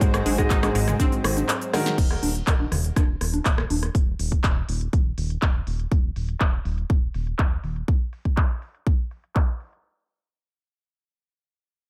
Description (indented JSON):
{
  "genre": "progressive house",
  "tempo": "122 BPM",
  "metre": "4/4",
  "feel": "straight",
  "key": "unclear",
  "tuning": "A4 = 440 Hz",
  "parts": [
    { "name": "lush unison pad", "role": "sustained chords", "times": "0.0-1.9 s", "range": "Gb3 to C4", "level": "-37 LUFS", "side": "equal", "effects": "none" },
    { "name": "analog pluck", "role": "arpeggios", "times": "0.0-1.9 s", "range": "Ab3 to Eb4", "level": "-32 LUFS", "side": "equal", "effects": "chorus, sidechain pumping, tape echo" },
    { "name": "dark baby grand piano", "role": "stabs", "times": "0.0-2.0 s", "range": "Ab2 to Eb5", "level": "-30 LUFS", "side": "equal", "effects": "sidechain pumping, tape echo" },
    { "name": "fat analog bass", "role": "bass", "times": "0.0-7.8 s", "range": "Eb1 to Ab1", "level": "-30 LUFS", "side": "equal", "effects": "sidechain pumping" },
    { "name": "big-room dance drum kit", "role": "drums", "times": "0.0-9.8 s", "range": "crash cymbal, handclaps, hi-hat, shaker, snare drum, woodblock", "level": "-32 LUFS", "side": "equal", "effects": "overdrive, low-pass filter on hats, small room ambience, low-pass filter on perc, low-pass filter on snare, low-pass filter on cymbals" },
    { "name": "electronic kick drum", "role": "drums", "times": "0.0-9.5 s", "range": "none", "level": "-24 LUFS", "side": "equal", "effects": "small room ambience" },
    { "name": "punchy analog drum machine", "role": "percussion", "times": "0.1-3.9 s", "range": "congas, rim click, toms", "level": "-31 LUFS", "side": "equal", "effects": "sidechain pumping on snare, small room ambience, sidechain pumping on perc, sidechain pumping on toms" }
  ],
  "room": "little or no reverb",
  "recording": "none",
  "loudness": "-24 LUFS",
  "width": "mono",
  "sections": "0.0-2.0 A section; 2.0-9.8 B section",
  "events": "drop 0.0-2.0; drum fill 1.7; filter sweep on drum 2.0-9.8; filter sweep on analog synth bass 2.0-7.9",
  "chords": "0.0 Ab7; 2.0 N.C.",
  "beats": "| 0.01 0.51 1.00 1.49 | 1.98 2.47 2.96 3.46 | 3.95 4.44 4.93 5.42 | 5.91 6.41 6.90 7.39 | 7.88 8.37 8.87 9.36"
}